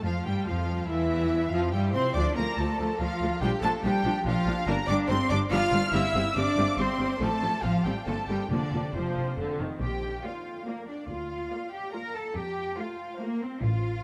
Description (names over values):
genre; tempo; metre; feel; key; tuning
quick classical-period movement for string orchestra; 142 BPM; 3/4; straight; Bb major from 4.7 s; A4 = 440 Hz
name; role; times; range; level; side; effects
clear symphonic violin section; melody; 0.0-14.0 s; Bb4 to F6; -36 LUFS; equal; none
warm studio violin section; second line; 0.0-13.5 s; C4 to F5; -37 LUFS; equal; none
rich symphonic viola section; accompaniment; 0.0-13.5 s; D3 to F4; -34 LUFS; equal; none
rich chamber double bass section; bass; 0.0-14.0 s; F1 to C3; -34 LUFS; equal; none
rich symphonic cello section; bass; 0.0-14.0 s; C3 to Bb4; -34 LUFS; equal; none
room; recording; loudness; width
wet cathedral reverb, RT60 4.8 s; in a vast, echoing space; -28 LUFS; mono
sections
0.0-9.8 A section; 9.8-14.0 B section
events
none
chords
0.0 N.C.; 0.9 C/E; 2.2 Dm; 3.4 Bb; 4.7 G5; 5.9 C/G; 7.2 F/A; 8.1 Gm; 8.5 Fsus4; 9.4 F5; 9.8 Bb; 11.1 Bb/D; 12.4 F